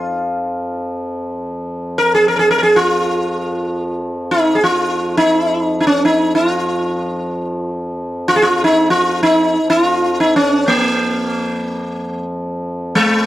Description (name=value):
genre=indian classical, Hindustani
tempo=free time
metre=none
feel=none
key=F raga malkauns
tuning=A4 = 440 Hz
part: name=sitar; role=melody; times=0.0-13.3 s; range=Ab3 to Bb4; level=-14 LUFS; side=equal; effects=plate reverb
part: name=pedal harmonium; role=drone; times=0.0-13.3 s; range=F2 to F3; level=-24 LUFS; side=equal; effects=none
room=moderate studio reverb, RT60 0.6 s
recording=dark, warm production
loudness=-14 LUFS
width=side -14 dB against mid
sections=0.0-13.3 A section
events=none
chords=none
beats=free time